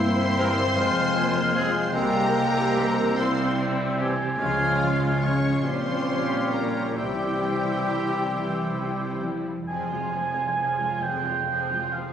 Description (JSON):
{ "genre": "classical, slow romantic movement for symphony orchestra", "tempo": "42-51 BPM (dotted quarters)", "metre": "6/8", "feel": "rubato", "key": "F minor", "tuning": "A4 = 440 Hz", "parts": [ { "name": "rich studio violin section", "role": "melody", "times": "0.0-12.1 s", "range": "F4 to Db6", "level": "-33 LUFS", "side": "left 2 dB", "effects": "none" }, { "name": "concert flute", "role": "second line", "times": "0.0-9.3 s", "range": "E6 to F6", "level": "-33 LUFS", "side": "left 1 dB", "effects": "none" }, { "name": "dark clarinet", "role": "second line", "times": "0.0-9.0 s", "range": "E5 to Ab5", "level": "-32 LUFS", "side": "left 1 dB", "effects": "none" }, { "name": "rich studio violin section", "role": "second line", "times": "0.0-12.1 s", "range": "C4 to Db5", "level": "-33 LUFS", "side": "left 1 dB", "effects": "none" }, { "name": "warm oboe", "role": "second line", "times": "0.0-12.1 s", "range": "C5 to Ab5", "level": "-31 LUFS", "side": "right 4 dB", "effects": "none" }, { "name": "warm bassoon", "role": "accompaniment", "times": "0.0-9.3 s", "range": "G3 to Bb3", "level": "-34 LUFS", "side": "left 1 dB", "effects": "none" }, { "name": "warm studio viola section", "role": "accompaniment", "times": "0.0-12.1 s", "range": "F3 to G4", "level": "-31 LUFS", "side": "equal", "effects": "none" }, { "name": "mellow French horn section", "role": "sustained chords", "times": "0.0-9.2 s", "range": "F3 to Db4", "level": "-29 LUFS", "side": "left 1 dB", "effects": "none" }, { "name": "concert harp", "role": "arpeggios", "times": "0.0-12.1 s", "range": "F2 to C6", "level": "-35 LUFS", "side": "left 7 dB", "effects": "none" }, { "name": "rich studio cello section", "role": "bass", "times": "0.0-12.1 s", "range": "F2 to F3", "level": "-32 LUFS", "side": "right 2 dB", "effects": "none" }, { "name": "warm studio double bass section", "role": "bass", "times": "0.0-12.1 s", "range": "F1 to Db2", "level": "-34 LUFS", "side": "right 3 dB", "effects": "none" }, { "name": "clear trombone section", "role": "sustained chords", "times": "0.4-9.3 s", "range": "E3 to Db4", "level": "-35 LUFS", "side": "right 3 dB", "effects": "none" }, { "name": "clear trumpet section", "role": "stabs", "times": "0.4-9.3 s", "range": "F4 to Bb4", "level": "-34 LUFS", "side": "left 1 dB", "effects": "none" } ], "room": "wet scoring stage reverb, RT60 2.0 s", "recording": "recorded on a phone in the room, club reverb, compression", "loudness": "-22 LUFS", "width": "side -9 dB against mid", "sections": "0.0-9.7 A section; 9.7-12.1 B section", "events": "none", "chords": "0.0 C7/G; 0.8 Fm; 2.0 C7; 4.4 Db; 5.6 Gm7b5/Bb; 7.0 C; 9.7 Fm" }